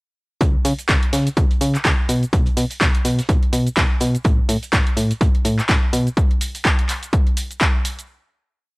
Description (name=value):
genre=piano house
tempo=125 BPM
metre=4/4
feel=swing 57% on 16ths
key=unclear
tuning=A4 = 441 Hz
part: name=solid FM bass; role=bass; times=0.4-6.1 s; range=A1 to C#3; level=-20 LUFS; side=equal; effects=sidechain pumping
part: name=electronic kick drum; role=drums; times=0.4-7.7 s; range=none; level=-18 LUFS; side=equal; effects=overdrive
part: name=open jazz drum kit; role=drums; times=0.4-6.1 s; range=hi-hat, snare drum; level=-35 LUFS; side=right 2 dB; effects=none
part: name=punchy analog drum machine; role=drums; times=0.4-8.1 s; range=handclaps, hi-hat, shaker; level=-22 LUFS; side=equal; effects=overdrive
room=little or no reverb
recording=dry, gritty hardware recording, cassette tape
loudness=-16 LUFS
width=side -27 dB against mid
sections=0.4-8.1 drop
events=drop 0.4-8.1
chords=none